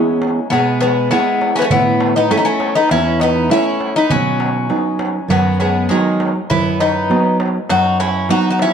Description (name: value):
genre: greek folk, Greek bouzouki band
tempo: 100 BPM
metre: 4/4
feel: straight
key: unclear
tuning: A4 = 440 Hz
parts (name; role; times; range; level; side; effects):
- Greek bouzouki; melody; 0.0-8.7 s; G#3 to F#4; -17 LUFS; left 4 dB; none
- Greek bouzouki; second line; 0.0-8.7 s; D#3 to D#4; -22 LUFS; right 3 dB; none
- nylon-string guitar; accompaniment; 0.0-8.7 s; E2 to G#4; -17 LUFS; right 2 dB; none
- darbuka; percussion; 0.2-8.7 s; none; -24 LUFS; right 2 dB; none
room: moderate plate reverb, RT60 3.5 s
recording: dark, warm production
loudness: -13 LUFS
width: side -7 dB against mid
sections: 0.0-8.7 A section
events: none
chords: 0.0 E; 1.7 A; 4.1 B